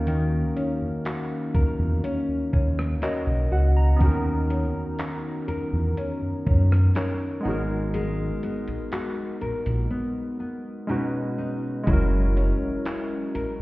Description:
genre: contemporary R&B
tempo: 61 BPM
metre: 4/4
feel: straight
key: B major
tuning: A4 = 440 Hz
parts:
  - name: warm analog keys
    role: accompaniment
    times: 0.0-13.6 s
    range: G#3 to A#5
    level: -30 LUFS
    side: equal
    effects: chorus
  - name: nylon-string guitar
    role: arpeggios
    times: 0.0-13.6 s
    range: B2 to A#4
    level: -30 LUFS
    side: left 2 dB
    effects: none
  - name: smooth gliding synth bass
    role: bass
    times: 0.0-13.6 s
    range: F#1 to F#2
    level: -23 LUFS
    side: equal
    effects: none
  - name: gated 80s digital drum machine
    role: drums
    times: 0.1-13.6 s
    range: handclaps, hi-hat, kick drum, rim click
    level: -26 LUFS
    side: equal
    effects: gated reverb
room: digital ambience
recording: heard muffled through a wall, stone room reverb, EQ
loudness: -22 LUFS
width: side -20 dB against mid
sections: 0.0-11.9 A section; 11.9-13.6 A section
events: drums muted 9.9-11.9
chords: 0.0 D#m7; 4.0 Bmaj9/D#; 7.4 G#m9; 10.9 B6; 11.9 F#7

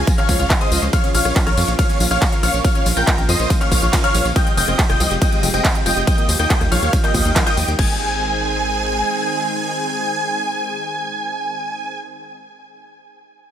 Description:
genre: uplifting trance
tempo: 140 BPM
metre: 4/4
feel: straight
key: Ab major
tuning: A4 = 440 Hz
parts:
  - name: big supersaw lead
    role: melody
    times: 0.0-12.0 s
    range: Bb4 to Ab5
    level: -22 LUFS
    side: right 1 dB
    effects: phaser, sidechain pumping, digital delay
  - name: dark baby grand piano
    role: second line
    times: 0.0-12.2 s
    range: Eb6 to Ab6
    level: -27 LUFS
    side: left 7 dB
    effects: sidechain pumping, digital delay
  - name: analog pluck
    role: arpeggios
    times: 0.0-8.0 s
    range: F3 to Db5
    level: -28 LUFS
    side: left 4 dB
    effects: chorus, sidechain pumping, digital delay
  - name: tight sequencer bass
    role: bass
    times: 0.0-9.0 s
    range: F1 to F2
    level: -21 LUFS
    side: equal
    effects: sidechain pumping
  - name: lush unison pad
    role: sustained chords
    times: 0.1-12.0 s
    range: C3 to Ab4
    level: -27 LUFS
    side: right 1 dB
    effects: chorus, sidechain pumping
  - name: big-room dance drum kit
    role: drums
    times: 0.1-7.9 s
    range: crash cymbal, handclaps, hi-hat, ride cymbal, rim click, tambourine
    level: -22 LUFS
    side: left 1 dB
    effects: overdrive, sidechain pumping on hats, sidechain pumping on perc, sidechain pumping on cymbals
  - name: electronic kick drum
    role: drums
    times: 0.1-7.9 s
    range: none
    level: -17 LUFS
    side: equal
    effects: overdrive
room: digital ambience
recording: none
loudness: -15 LUFS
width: side -10 dB against mid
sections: 0.0-7.8 A section; 7.8-11.2 B section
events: drop 0.0-7.8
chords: 0.0 Db; 0.9 Bbm; 4.4 Fmadd9; 6.1 Ebadd9; 7.8 Ab

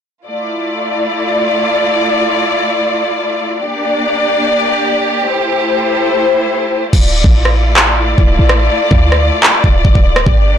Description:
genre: hip hop, trap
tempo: 144 BPM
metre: 4/4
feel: half-time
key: D minor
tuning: A4 = 444 Hz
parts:
  - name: warm studio string section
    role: sustained chords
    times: 0.3-10.6 s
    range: A3 to D5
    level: -13 LUFS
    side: left 1 dB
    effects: none
  - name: clean 808-style bass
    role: bass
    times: 6.9-10.6 s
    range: D1 to D2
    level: -13 LUFS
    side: equal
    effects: none
  - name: trap drum kit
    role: drums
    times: 6.9-10.4 s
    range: crash cymbal, handclaps, kick drum, rim click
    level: -10 LUFS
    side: equal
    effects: none
room: light reverb, digital ambience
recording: blown-out, overdriven recording, overdrive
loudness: -10 LUFS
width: side -9 dB against mid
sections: 0.3-6.9 A section; 6.9-10.6 B section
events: hi-hats muted 6.9-10.6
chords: 0.3 Dmadd9; 3.6 Gm; 5.3 Am7; 6.9 Dmadd9

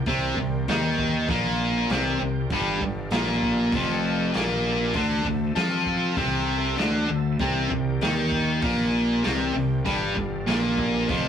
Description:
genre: blues rock power trio and southern rock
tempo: 98 BPM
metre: 4/4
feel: straight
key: unclear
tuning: A4 = 444 Hz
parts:
  - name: overdriven tonewheel organ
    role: sustained chords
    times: 0.0-11.3 s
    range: G4 to A5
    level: -37 LUFS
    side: right 1 dB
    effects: slow rotary speaker, chorus vibrato
  - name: fuzz fingered electric bass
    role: bass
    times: 0.0-11.3 s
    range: F1 to F2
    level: -28 LUFS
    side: equal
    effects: overdrive
  - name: distorted electric guitar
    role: riff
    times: 0.1-11.3 s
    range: F2 to F4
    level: -24 LUFS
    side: equal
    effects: overdrive
  - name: vintage drum kit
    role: drums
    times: 0.1-11.2 s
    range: hi-hat, kick drum, snare drum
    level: -31 LUFS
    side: equal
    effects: none
room: wet small room reverb, RT60 0.5 s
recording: rough rehearsal-room recording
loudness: -22 LUFS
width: side -8 dB against mid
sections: 0.0-11.3 A section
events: none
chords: 0.0 C5; 2.5 G5; 5.0 D5; 7.4 C5; 9.9 G5

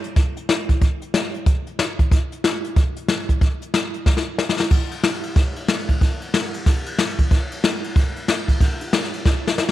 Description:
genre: rock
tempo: 185 BPM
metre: 4/4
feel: swing 62% on 8ths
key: none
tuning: none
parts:
  - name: jazz brush drum kit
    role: drums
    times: 0.0-9.7 s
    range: crash cymbal, hi-hat, kick drum, ride cymbal, snare drum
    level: -18 LUFS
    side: equal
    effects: none
room: light reverb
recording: 1960s-style stereo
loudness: -18 LUFS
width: side -14 dB against mid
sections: 0.0-4.7 A section; 4.7-9.7 A section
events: drum fill 4.1-4.7, 9.3-9.7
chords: none

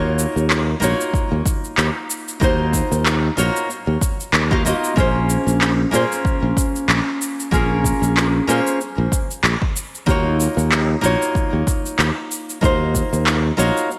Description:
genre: sunset chillout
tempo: 94 BPM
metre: 4/4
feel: swing 56% on 16ths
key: unclear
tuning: A4 = 440 Hz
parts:
  - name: nylon-string guitar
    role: accompaniment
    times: 0.0-13.9 s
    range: Bb3 to F5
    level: -23 LUFS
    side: equal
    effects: digital delay
  - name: sustaining fretless electric bass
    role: bass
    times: 0.0-13.7 s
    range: Bb1 to Bb2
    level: -22 LUFS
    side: equal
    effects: analog chorus
  - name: electronic shaker and handclaps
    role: drums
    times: 0.2-14.0 s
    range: none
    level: -24 LUFS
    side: equal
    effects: overdrive, gated reverb
  - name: electronic kick drum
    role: drums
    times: 1.1-13.1 s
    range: none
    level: -23 LUFS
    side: equal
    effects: overdrive
room: moderate plate reverb, RT60 2.6 s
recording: bright 1980s-style digital production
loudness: -19 LUFS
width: mono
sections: 0.0-14.0 A section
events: none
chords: 0.0 Ebm9; 5.0 Bbm9; 10.1 Ebm9

